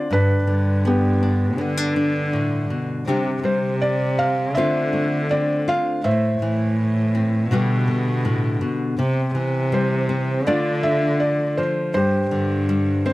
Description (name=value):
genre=acoustic folk-pop ballad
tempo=81 BPM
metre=4/4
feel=straight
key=unclear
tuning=A4 = 440 Hz
part: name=felt-muted upright piano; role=melody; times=0.0-13.1 s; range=B3 to F5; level=-23 LUFS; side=right 1 dB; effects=none
part: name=nylon-string guitar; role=accompaniment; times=0.0-13.1 s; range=G2 to G4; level=-23 LUFS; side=left 2 dB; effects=none
part: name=warm cello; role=bass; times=0.1-13.1 s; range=G2 to D3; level=-22 LUFS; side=right 1 dB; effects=none
room=little or no reverb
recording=dry, close 1970s-style studio recording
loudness=-18 LUFS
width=side -18 dB against mid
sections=0.0-13.1 A section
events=none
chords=0.1 G; 3.1 Csus2; 4.6 Dm7; 6.0 Am; 7.5 G/B; 9.0 C; 10.5 Dm; 11.9 Gsus4